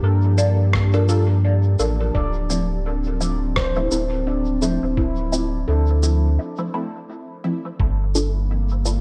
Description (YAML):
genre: ambient dub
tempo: 85 BPM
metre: 4/4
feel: swing 58% on 16ths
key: G dorian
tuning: A4 = 440 Hz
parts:
  - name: warbly tape-like pad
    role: sustained chords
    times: 0.0-9.0 s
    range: F3 to A5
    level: -31 LUFS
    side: equal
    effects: chorus, built-in reverb
  - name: handpan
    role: arpeggios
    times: 0.0-6.4 s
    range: D4 to D5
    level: -32 LUFS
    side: equal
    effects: vintage 12-bit sampler grit, dub echo
  - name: warm sub bass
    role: bass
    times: 0.0-9.0 s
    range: D1 to G2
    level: -22 LUFS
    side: equal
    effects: none
  - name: filtered dub chord stab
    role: stabs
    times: 0.4-9.0 s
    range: F3 to A4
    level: -29 LUFS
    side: equal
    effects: phaser, subtle chorus, dub echo
  - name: electronic shaker and rim click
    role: drums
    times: 0.4-9.0 s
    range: none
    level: -31 LUFS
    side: equal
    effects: dub echo
  - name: electronic kick drum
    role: drums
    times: 0.7-8.0 s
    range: none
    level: -25 LUFS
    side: equal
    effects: none
room: light reverb, digital ambience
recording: none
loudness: -20 LUFS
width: mono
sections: 0.0-7.8 A section; 7.8-9.0 B section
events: break 6.4-7.8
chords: 0.0 Gm9; 2.1 Dm9; 7.8 Gm9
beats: 0.03 0.74 1.44 | 2.15 2.85 3.56 4.27 | 4.97 5.68 6.38 7.09 | 7.80 8.50